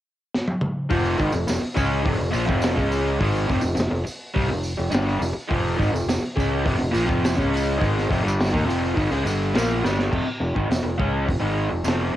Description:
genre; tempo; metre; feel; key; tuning
garage rock duo or trio; 104 BPM; 4/4; straight; F minor; A4 = 435 Hz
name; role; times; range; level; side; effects
crunchy breakbeat drum kit; drums; 0.3-12.0 s; crash cymbal, hi-hat, kick drum, snare drum, toms; -26 LUFS; equal; cassette tape
raw garage guitar; riff; 0.9-12.2 s; F2 to Db4; -22 LUFS; equal; overdrive, cassette tape
fingered electric bass; bass; 0.9-12.1 s; F1 to Eb2; -27 LUFS; equal; none
tambourine; percussion; 1.1-12.0 s; none; -39 LUFS; right 3 dB; none
room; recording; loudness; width
small room ambience; home recording on cassette; -20 LUFS; side -13 dB against mid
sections
0.9-10.1 A section; 10.1-12.2 B section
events
drum fill 0.3-0.9, 9.8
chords
0.0 N.C.; 0.9 Fm

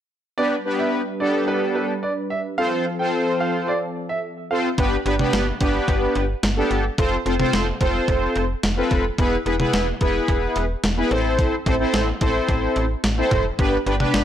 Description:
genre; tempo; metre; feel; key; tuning
synth-pop; 109 BPM; 4/4; straight; G mixolydian; A4 = 437 Hz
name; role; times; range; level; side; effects
clear baby grand piano; second line; 0.4-4.6 s; B4 to G5; -26 LUFS; right 2 dB; analog delay
analog synth brass; accompaniment; 0.4-14.2 s; B3 to C5; -21 LUFS; equal; chorus
warm analog pad; sustained chords; 0.4-4.8 s; F3 to B4; -28 LUFS; equal; chorus
slap-like FM bass; bass; 4.8-14.2 s; E1 to A1; -25 LUFS; equal; none
clean 12-bit digital drum machine; drums; 4.8-14.2 s; hi-hat, kick drum, snare drum, toms; -23 LUFS; equal; none
room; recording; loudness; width
light reverb, digital ambience; dry, gritty hardware recording; -19 LUFS; side -10 dB against mid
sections
0.4-4.8 A section; 4.8-14.2 B section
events
none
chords
0.4 G; 2.6 F; 4.8 G; 7.0 F; 9.2 E; 11.1 Am; 13.6 G

